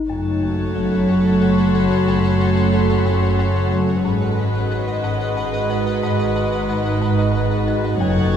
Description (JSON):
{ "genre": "cinematic, suspense film score", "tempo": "91 BPM", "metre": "3/4", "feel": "straight", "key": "G# phrygian", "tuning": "A4 = 439 Hz", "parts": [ { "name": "swarming drone", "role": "drone", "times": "0.0-8.4 s", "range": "F#1 to G#1", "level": "-28 LUFS", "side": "left 2 dB", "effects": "built-in reverb" }, { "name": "warm symphonic violin section", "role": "melody", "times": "0.1-8.4 s", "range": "B4 to C#5", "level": "-29 LUFS", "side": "left 4 dB", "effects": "none" }, { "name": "rich studio viola section", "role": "accompaniment", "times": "0.1-8.4 s", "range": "G#3 to F#4", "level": "-24 LUFS", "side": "right 2 dB", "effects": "none" }, { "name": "pulsing gated texture", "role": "sustained chords", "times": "0.7-8.4 s", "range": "A4 to F#5", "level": "-25 LUFS", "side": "equal", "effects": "chorus, built-in reverb" }, { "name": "folk marimba with hard mallets", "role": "riff", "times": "0.1-8.4 s", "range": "F#2 to G#3", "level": "-22 LUFS", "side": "left 2 dB", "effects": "none" }, { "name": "warm symphonic cello section", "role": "bass", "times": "0.1-8.4 s", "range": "F#2 to G#2", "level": "-22 LUFS", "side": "right 1 dB", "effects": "none" }, { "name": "warm symphonic double bass section", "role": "bass", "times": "0.1-8.4 s", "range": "F#1 to G#1", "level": "-25 LUFS", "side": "right 2 dB", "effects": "none" }, { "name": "warm chamber violin section", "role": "texture", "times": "0.1-3.7, 8.0-8.4 s", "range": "A5 to A6", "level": "-30 LUFS", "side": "left 5 dB", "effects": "none" } ], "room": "wet scoring stage reverb, RT60 1.7 s", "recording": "heard from further back in the room", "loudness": "-16 LUFS", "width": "side -8 dB against mid", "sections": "0.1-8.4 A section", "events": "none", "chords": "0.1 F#m; 4.0 G#m7", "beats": "| 0.09 0.75 1.41 | 2.07 2.73 3.39 | 4.05 4.71 5.37 | 6.03 6.68 7.34 | 8.00" }